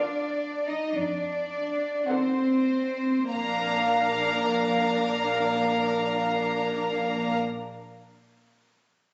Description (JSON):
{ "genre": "classical, slow romantic movement for string orchestra", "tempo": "47-60 BPM", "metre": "4/4", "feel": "rubato", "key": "Bb major", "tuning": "A4 = 440 Hz", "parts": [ { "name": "warm studio violin section", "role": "melody", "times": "0.0-7.3 s", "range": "F5 to Gb5", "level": "-31 LUFS", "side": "equal", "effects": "none" }, { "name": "warm chamber violin section", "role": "second line", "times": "0.0-7.4 s", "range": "C5 to Bb5", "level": "-33 LUFS", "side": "equal", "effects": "none" }, { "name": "dark symphonic viola section", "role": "accompaniment", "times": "0.0-7.4 s", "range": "D3 to Bb4", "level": "-32 LUFS", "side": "equal", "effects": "none" }, { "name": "warm symphonic cello section", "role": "bass", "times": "0.0-7.3 s", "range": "Bb3 to Eb4", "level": "-31 LUFS", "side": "equal", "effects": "none" }, { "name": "dark symphonic double bass section", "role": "bass", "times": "0.9-7.4 s", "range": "Bb1 to F2", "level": "-42 LUFS", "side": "equal", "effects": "none" } ], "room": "moderate concert hall reverb, RT60 1.7 s", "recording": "recorded on a phone in the room, club reverb, nothing above 7.8 kHz", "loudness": "-26 LUFS", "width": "mono", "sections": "0.0-3.3 A section; 3.3-8.1 B section", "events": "slowing down 0.0-3.3", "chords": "0.0 Bb; 0.9 F7b9; 3.3 Bb" }